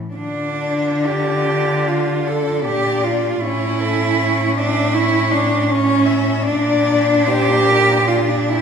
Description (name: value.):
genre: classical, lyrical piece for cello ensemble.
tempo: 63-81 BPM.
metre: 4/4.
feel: rubato.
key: D minor.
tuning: A4 = 440 Hz.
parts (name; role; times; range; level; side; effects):
dark cello; accompaniment; 0.0-8.6 s; E3 to D4; -23 LUFS; left 2 dB; none.
warm cello; melody; 0.2-8.6 s; F4 to E5; -24 LUFS; left 8 dB; none.
warm cello; second line; 0.2-8.6 s; C#4 to A4; -18 LUFS; right 3 dB; none.
rich cello; bass; 0.2-8.6 s; A2 to D3; -22 LUFS; equal; none.
room: wet recital hall reverb, RT60 1.6 s.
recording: recorded in a church or concert hall.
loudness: -15 LUFS.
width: side -7 dB against mid.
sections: 0.2-8.6 A section.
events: none.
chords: 0.2 Dm; 3.4 A; 6.5 Bb.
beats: | 0.16 1.07 1.89 2.66 | 3.43 4.21 4.97 5.72 | 6.47 7.29 8.08.